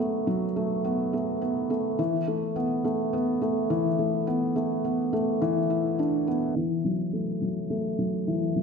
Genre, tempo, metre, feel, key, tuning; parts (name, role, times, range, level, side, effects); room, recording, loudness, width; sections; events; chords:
electronica; 105 BPM; 4/4; straight; A4 = 440 Hz
felt-muted upright piano; solo; 0.0-8.6 s; E3 to E4; -24 LUFS; equal
wet recital hall reverb, RT60 1.4 s; low-pass filter; -24 LUFS; side -5 dB against mid
0.0-6.6 A section; 6.6-8.6 B section
filter sweep 6.6-8.6